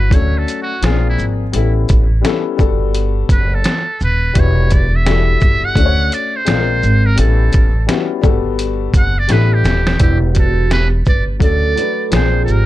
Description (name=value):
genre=hip hop, jazz-hop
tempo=85 BPM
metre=4/4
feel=swing 61% on 16ths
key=E dorian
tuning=A4 = 440 Hz
part: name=trumpet with metal mute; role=melody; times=0.0-12.7 s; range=E4 to F#5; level=-20 LUFS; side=right 2 dB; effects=analog delay
part: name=dark concert grand piano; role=accompaniment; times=0.0-12.7 s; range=E#3 to C#5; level=-20 LUFS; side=left 10 dB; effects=plate reverb
part: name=upright bass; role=bass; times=0.0-12.7 s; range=D#1 to D2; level=-15 LUFS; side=equal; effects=none
part: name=trip hop sampler-style drum kit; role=drums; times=0.1-12.7 s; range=hi-hat, kick drum, shaker, snare drum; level=-16 LUFS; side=equal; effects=none
part: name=vibraphone with medium mallets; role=second line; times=10.0-12.7 s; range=E4 to B4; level=-22 LUFS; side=right 12 dB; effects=plate reverb, analog delay
room=little or no reverb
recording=dark, warm production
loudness=-12 LUFS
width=side -15 dB against mid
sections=0.0-10.0 A section; 10.0-12.7 B section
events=muted trumpet solo 0.0-10.0; drum fill 9.3-10.0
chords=0.1 Dmaj7; 0.8 A#9; 1.5 A9; 2.6 Gmaj9; 4.4 Em9; 5.8 Dmaj7; 6.5 A#9; 7.2 A9; 8.2 Gmaj9; 9.3 A9sus4; 10.0 Em7; 11.4 Dmaj7; 12.1 A#9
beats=0.12 0.83 | 1.54 2.24 2.95 3.65 | 4.36 5.07 5.77 6.48 | 7.18 7.89 8.60 9.30 | 10.01 10.71 11.42 12.12